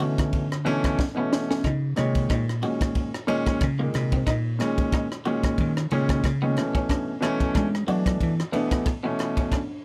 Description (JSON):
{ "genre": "electric jazz fusion", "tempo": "91 BPM", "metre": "4/4", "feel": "swing 56% on 16ths", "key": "unclear", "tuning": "A4 = 439 Hz", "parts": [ { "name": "warm grand piano", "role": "accompaniment", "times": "0.0-9.6 s", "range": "Bb2 to Db5", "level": "-28 LUFS", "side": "equal", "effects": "none" }, { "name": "clean electric guitar", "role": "stabs", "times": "0.0-9.8 s", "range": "Bb3 to F#4", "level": "-36 LUFS", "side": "equal", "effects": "analog chorus" }, { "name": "vintage slap bass", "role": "bass", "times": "0.0-8.4 s", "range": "Bb2 to Ab3", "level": "-28 LUFS", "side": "equal", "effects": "none" }, { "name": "crisp fusion drum kit", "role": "drums", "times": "0.0-9.7 s", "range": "kick drum, ride cymbal, rim click, snare drum", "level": "-30 LUFS", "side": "equal", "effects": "none" } ], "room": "little or no reverb", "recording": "none", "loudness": "-25 LUFS", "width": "mono", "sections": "0.0-9.8 A section", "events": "slap bass solo 0.0-9.8; drum fill 1.0-1.6", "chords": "0.0 Bm11; 1.6 Eb7(no3); 6.6 Bm11" }